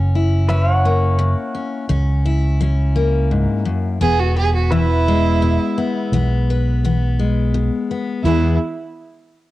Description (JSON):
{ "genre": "honky-tonk and classic country", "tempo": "85 BPM", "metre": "3/4", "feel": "straight", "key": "E major", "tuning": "A4 = 438 Hz", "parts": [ { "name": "picked steel-string acoustic guitar", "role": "accompaniment", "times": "0.0-8.6 s", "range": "E2 to B4", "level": "-21 LUFS", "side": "left 4 dB", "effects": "none" }, { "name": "fingered electric bass", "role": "bass", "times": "0.0-8.6 s", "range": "E1 to E2", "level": "-16 LUFS", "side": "equal", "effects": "none" }, { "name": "pedal steel guitar", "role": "sustained chords", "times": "0.5-8.2 s", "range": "B4 to F#5", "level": "-24 LUFS", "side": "equal", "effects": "wide subtle chorus" }, { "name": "clear fiddle", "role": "second line", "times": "4.0-8.6 s", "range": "E4 to G#4", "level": "-20 LUFS", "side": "right 5 dB", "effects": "none" } ], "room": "light reverb, small room ambience", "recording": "home recording on cassette", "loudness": "-15 LUFS", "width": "side -16 dB against mid", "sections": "0.0-8.2 A section; 8.2-9.5 B section", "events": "none", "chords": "0.0 F#; 4.0 E", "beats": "0.49 1.19 | 1.89 2.60 3.30 | 4.01 4.71 5.42 | 6.12 6.83 7.53 | 8.24" }